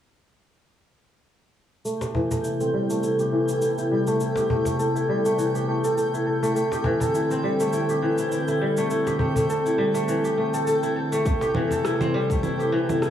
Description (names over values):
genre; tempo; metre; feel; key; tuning
organic downtempo; 102 BPM; 4/4; swing 55% on 16ths; A minor; A4 = 442 Hz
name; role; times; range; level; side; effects
airy breathy pad; sustained chords; 1.8-13.1 s; C3 to B4; -25 LUFS; left 1 dB; chorus, sidechain pumping
kora; arpeggios; 1.8-13.1 s; E3 to A4; -24 LUFS; equal; low-pass filter, digital delay
twinkling granular texture; texture; 2.4-13.1 s; G5; -36 LUFS; right 2 dB; built-in reverb
electronic cabasa, congas and rim click; drums; 1.9-13.1 s; none; -33 LUFS; equal; overdrive
cajon; percussion; 2.0-11.8 s; none; -29 LUFS; left 2 dB; none
electronic kick drum; drums; 11.3-12.4 s; none; -25 LUFS; equal; overdrive
room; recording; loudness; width
moderate lush hall reverb, RT60 1.5 s; small room ambience; -21 LUFS; side -10 dB against mid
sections
1.8-13.1 A section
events
filter sweep on kora 1.8-13.1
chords
1.8 Amadd9; 6.6 D5; 11.3 Amadd9